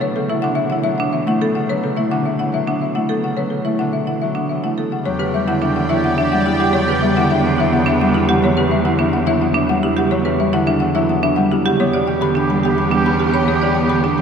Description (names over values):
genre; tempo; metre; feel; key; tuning
classical, minimalist pattern music; 107 BPM; 3/4; straight; B minor, E dorian from 5.1 s; A4 = 440 Hz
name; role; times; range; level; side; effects
folk marimba with medium hard mallets; melody; 0.0-14.2 s; G4 to B5; -22 LUFS; left 5 dB; none
Celtic harp; accompaniment; 0.0-14.2 s; B2 to C#4; -20 LUFS; equal; none
marimba with medium hard mallets; arpeggios; 0.0-14.2 s; D4 to D5; -21 LUFS; right 4 dB; none
rich cello; bass; 0.0-14.2 s; E2 to B2; -22 LUFS; right 2 dB; none
rich studio string section; sustained chords; 5.0-8.2, 11.8-14.2 s; B3 to G5; -27 LUFS; left 1 dB; none
warm oboe; second line; 5.1-8.2, 11.8-14.2 s; G4; -26 LUFS; right 2 dB; none
room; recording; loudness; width
wet cathedral reverb, RT60 5.0 s; none; -15 LUFS; side -7 dB against mid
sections
0.0-5.1 A section; 5.1-14.2 B section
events
none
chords
0.0 Bm9; 5.1 Em9; 11.8 G/E